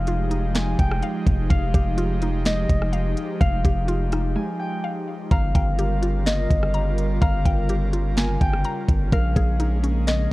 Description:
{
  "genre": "hip hop, atmospheric cloud-rap",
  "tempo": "126 BPM",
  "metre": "4/4",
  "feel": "half-time",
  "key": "F minor",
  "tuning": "A4 = 440 Hz",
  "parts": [
    { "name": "Celtic harp", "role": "melody", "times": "0.0-10.3 s", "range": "Eb5 to Ab5", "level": "-30 LUFS", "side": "left 2 dB", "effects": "tape echo" },
    { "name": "airy breathy pad", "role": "sustained chords", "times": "0.0-10.3 s", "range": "Db3 to Bb4", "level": "-28 LUFS", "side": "equal", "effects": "chorus, sidechain pumping" },
    { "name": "mallet-like synth pluck", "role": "arpeggios", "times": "0.0-10.3 s", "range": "Ab3 to Bb5", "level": "-32 LUFS", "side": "equal", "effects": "chorus, tape echo" },
    { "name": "long sustained 808-style bass", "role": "bass", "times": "0.0-10.3 s", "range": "F1 to Bb1", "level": "-22 LUFS", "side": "equal", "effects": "none" },
    { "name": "trap drum kit", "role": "drums", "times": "0.1-10.2 s", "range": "hi-hat, kick drum, rim click, snare drum", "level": "-21 LUFS", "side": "equal", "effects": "none" }
  ],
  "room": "digital ambience",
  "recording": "worn, warbling old tape, cassette tape, warbly pitch drift",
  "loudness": "-20 LUFS",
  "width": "side -19 dB against mid",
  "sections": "0.0-10.3 A section",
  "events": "break 4.4-5.3",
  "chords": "0.0 Fm9; 5.3 Gm7b5; 9.1 Bbm11",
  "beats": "0.07 0.55 1.03 | 1.50 1.98 2.46 2.93 | 3.41 3.88 4.36 4.84 | 5.31 5.79 6.26 6.74 | 7.22 7.69 8.17 8.65 | 9.12 9.60 10.07"
}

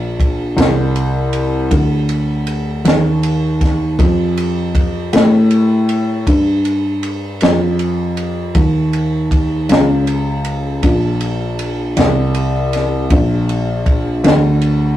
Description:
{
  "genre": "slow blues",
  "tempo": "53 BPM (dotted quarters)",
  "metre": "12/8",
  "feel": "straight",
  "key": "Bb major",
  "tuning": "A4 = 443 Hz",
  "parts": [
    { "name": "dark baby grand piano", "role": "bass", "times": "0.0-15.0 s", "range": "Bb1 to A2", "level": "-14 LUFS", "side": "equal", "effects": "none" },
    { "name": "compact cocktail drum kit", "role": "drums", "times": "0.2-14.8 s", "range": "kick drum, ride cymbal, snare drum", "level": "-18 LUFS", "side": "equal", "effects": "none" }
  ],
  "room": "moderate studio reverb, RT60 0.6 s",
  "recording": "rough rehearsal-room recording, tube saturation",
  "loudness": "-13 LUFS",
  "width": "side -13 dB against mid",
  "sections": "0.0-15.0 A section",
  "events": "none",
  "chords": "none",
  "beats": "0.57 1.71 2.85 | 4.00 5.13 6.28 7.42 | 8.55 9.69 10.83 11.97 | 13.11 14.24"
}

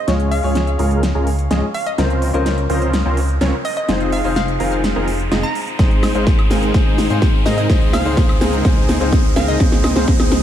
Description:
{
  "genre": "EDM, festival progressive house",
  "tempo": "126 BPM",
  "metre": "4/4",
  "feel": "straight",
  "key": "unclear",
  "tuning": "A4 = 440 Hz",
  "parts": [
    { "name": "hollow square pluck", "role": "melody", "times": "0.0-9.6 s", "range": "Eb5 to Bb5", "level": "-25 LUFS", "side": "right 1 dB", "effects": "chorus, digital delay" },
    { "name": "clear grand piano", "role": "accompaniment", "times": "0.0-10.4 s", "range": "C4 to F5", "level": "-24 LUFS", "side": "left 5 dB", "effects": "sidechain pumping, digital delay" },
    { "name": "riser", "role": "sound effects", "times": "1.0-10.4 s", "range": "none", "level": "-29 LUFS", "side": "right 1 dB", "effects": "none" },
    { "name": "dense compressed supersaw", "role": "riff", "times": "0.1-10.4 s", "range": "Ab3 to F5", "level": "-21 LUFS", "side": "right 1 dB", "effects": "cassette tape, sidechain pumping, low-pass filter, digital delay" },
    { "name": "wide detuned saw bass", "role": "bass", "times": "0.1-10.4 s", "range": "F1 to Ab2", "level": "-21 LUFS", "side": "equal", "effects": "chorus, sidechain pumping" },
    { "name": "big-room dance drum kit", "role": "drums", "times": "0.1-10.4 s", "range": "hi-hat, shaker, snare drum, woodblock", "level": "-21 LUFS", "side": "equal", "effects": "small room ambience" },
    { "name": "electronic kick drum", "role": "drums", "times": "5.8-10.2 s", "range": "none", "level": "-15 LUFS", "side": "equal", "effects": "small room ambience" }
  ],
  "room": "moderate recital hall reverb, RT60 1.4 s",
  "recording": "none",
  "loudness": "-14 LUFS",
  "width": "side -10 dB against mid",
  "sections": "0.0-10.4 A section",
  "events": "build-up 0.0-10.4; drum fill 0.0-10.4; filter sweep on supersaw synth 0.0-10.4; riser 1.0-10.4",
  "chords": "0.1 Db; 2.0 Bbmadd9/Db; 3.9 Fm7; 5.8 Ab; 7.7 Db; 9.6 Dbmaj9",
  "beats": "| 0.08 0.55 1.03 1.51 | 1.98 2.46 2.93 3.41 | 3.89 4.36 4.84 5.32 | 5.79 6.27 6.74 7.22 | 7.70 8.17 8.65 9.12 | 9.60 10.08"
}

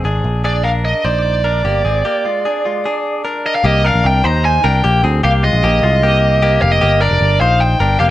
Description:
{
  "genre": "jangly indie pop",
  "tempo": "151 BPM",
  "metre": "4/4",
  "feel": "straight",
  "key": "unclear",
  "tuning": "A4 = 441 Hz",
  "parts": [
    { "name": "direct-recorded clean electric guitar", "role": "arpeggios", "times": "0.0-8.1 s", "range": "Ab3 to C5", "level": "-19 LUFS", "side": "left 3 dB", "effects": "plate reverb" },
    { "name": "picked electric bass", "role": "bass", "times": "0.0-8.1 s", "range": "F1 to Eb2", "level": "-15 LUFS", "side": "equal", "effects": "none" },
    { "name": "biting lead guitar", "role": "melody", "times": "0.5-8.0 s", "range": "D5 to Bb5", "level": "-16 LUFS", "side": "right 1 dB", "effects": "overdrive, plate reverb" }
  ],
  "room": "moderate studio reverb, RT60 0.6 s",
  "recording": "none",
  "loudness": "-12 LUFS",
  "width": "side -14 dB against mid",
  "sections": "0.0-3.6 A section; 3.6-8.1 B section",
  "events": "break 2.0-3.6",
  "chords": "0.2 Bb7; 3.6 Fm7",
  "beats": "0.04 | 0.45 0.85 1.25 1.65 | 2.05 2.45 2.85 3.25 | 3.64 4.04 4.44 4.83 | 5.23 5.63 6.02 6.42 | 6.81 7.21 7.61 8.00"
}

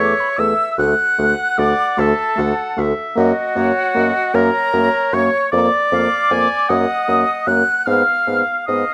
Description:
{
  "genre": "classical, slow romantic movement for wind quintet",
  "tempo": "51 BPM (dotted quarters)",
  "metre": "6/8",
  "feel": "rubato",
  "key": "unclear",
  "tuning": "A4 = 441 Hz",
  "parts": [
    { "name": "mellow silver concert flute", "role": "melody", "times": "0.0-8.9 s", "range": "Gb5 to Gb6", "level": "-22 LUFS", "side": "equal", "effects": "none" },
    { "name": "warm oboe", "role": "second line", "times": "0.0-8.9 s", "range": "Gb4 to Gb5", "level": "-22 LUFS", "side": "equal", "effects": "none" },
    { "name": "mellow clarinet", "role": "accompaniment", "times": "0.0-8.9 s", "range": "Db5 to Ab5", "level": "-26 LUFS", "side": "equal", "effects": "none" },
    { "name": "warm French horn", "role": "accompaniment", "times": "0.0-8.9 s", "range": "A3 to Cb4", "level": "-24 LUFS", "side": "equal", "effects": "none" },
    { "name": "mellow bassoon", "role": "bass", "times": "0.0-8.8 s", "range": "D2 to Ab2", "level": "-22 LUFS", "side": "equal", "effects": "none" }
  ],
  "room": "moderate stone room reverb, RT60 1.1 s",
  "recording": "none",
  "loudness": "-17 LUFS",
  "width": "mono",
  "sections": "0.0-8.9 A section",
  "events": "none",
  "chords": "0.0 A/E; 0.8 D; 3.2 Gb; 5.5 Bb/F; 6.7 Ebm/Gb; 7.9 Fdim/Ab",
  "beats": "| 0.79 1.98 | 3.17 4.34 | 5.53 6.70 | 7.87"
}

